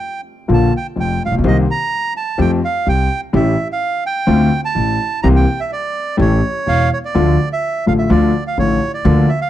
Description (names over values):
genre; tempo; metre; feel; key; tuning
tango; 126 BPM; 4/4; rubato; unclear; A4 = 440 Hz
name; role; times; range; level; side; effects
bandoneon; melody; 0.0-9.5 s; C#5 to Bb5; -20 LUFS; right 4 dB; none
warm grand piano; accompaniment; 0.5-9.3 s; E1 to G4; -16 LUFS; left 3 dB; none
upright bass; bass; 0.5-9.3 s; E1 to F2; -17 LUFS; right 1 dB; none
room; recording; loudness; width
studio ambience; dry, close 1970s-style studio recording; -13 LUFS; side -12 dB against mid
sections
0.0-7.2 A section; 7.2-9.5 B section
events
none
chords
0.5 Bb; 1.4 Cm7; 2.4 Fadd9; 3.3 A7; 4.3 Dm7; 5.2 C7; 6.2 A7; 7.2 Dm